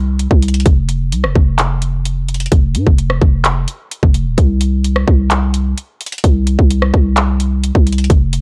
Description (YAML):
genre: hip hop, trap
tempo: 129 BPM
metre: 4/4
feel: half-time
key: unclear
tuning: A4 = 440 Hz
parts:
  - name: growling 808-style bass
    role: bass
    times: 0.0-8.4 s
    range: Eb1 to Ab2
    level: -17 LUFS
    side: equal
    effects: none
  - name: trap drum kit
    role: drums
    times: 0.2-8.4 s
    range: handclaps, hi-hat, kick drum, rim click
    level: -15 LUFS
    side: equal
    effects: none
room: digital ambience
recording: dark, warm production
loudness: -14 LUFS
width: mono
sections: 0.0-8.4 A section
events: none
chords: none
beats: 0.19 | 0.66 1.12 1.59 2.05 | 2.52 2.98 3.45 3.91 | 4.38 4.84 5.31 5.77 | 6.24 6.70 7.17 7.63 | 8.10